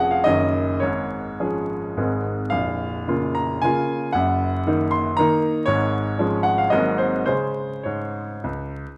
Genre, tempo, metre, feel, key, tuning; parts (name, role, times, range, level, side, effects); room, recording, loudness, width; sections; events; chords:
classical, romantic triple-time dance for piano with dotted rhythms; 98-125 BPM; 3/4; rubato; Db major; A4 = 440 Hz
bright grand piano; solo; 0.0-8.8 s; Bb0 to C6; -22 LUFS; equal
moderate scoring stage reverb, RT60 1.5 s; close, detailed microphones, vinyl crackle; -22 LUFS; mono
0.0-9.0 A section
0.3 Ebm7/Gb; 0.8 Db/Ab; 2.0 Ab; 2.5 Bbm; 4.1 Ebm/Gb; 5.7 Db/Ab; 6.7 Ab9; 7.3 Db5